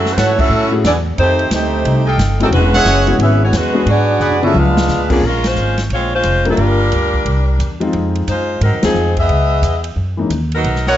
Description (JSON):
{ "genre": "jazz, big band swing", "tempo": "178 BPM", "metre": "4/4", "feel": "swing 63% on 8ths", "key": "F# minor", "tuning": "A4 = 440 Hz", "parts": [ { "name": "warm saxophone section", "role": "melody", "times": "0.0-11.0 s", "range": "E#3 to E#5", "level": "-16 LUFS", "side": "equal", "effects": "plate reverb" }, { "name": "mellow trombone section", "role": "second line", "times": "0.0-5.1 s", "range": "C3 to E#4", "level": "-21 LUFS", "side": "right 3 dB", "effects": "none" }, { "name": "upright bass", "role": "bass", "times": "0.0-11.0 s", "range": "E1 to A2", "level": "-16 LUFS", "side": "equal", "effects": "none" }, { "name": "swinging big-band drum kit", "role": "drums", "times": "0.1-11.0 s", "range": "crash cymbal, hi-hat, kick drum, ride cymbal, snare drum, toms", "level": "-22 LUFS", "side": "equal", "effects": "none" }, { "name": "clear trumpet section", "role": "stabs", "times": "0.2-4.5, 10.9-11.0 s", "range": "B3 to G5", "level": "-17 LUFS", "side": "right 1 dB", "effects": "none" }, { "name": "warm baby grand piano", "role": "accompaniment", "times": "0.7-10.3 s", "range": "Fb3 to A#4", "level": "-18 LUFS", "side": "left 3 dB", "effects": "none" } ], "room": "light reverb", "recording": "nothing above 7.8 kHz", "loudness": "-12 LUFS", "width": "side -12 dB against mid", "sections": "0.0-5.2 A section; 5.2-11.0 B section", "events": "band accent 0.3, 5.4, 8.8; drum fill 4.2-4.9", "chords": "0.0 F#m7; 1.2 F9; 2.5 E69; 3.9 G#m7b5; 4.6 C#7b9; 5.2 Bbm9; 6.6 Gm7; 7.3 C7b13; 7.9 Fm7; 9.3 Dbm9; 10.0 Gb13" }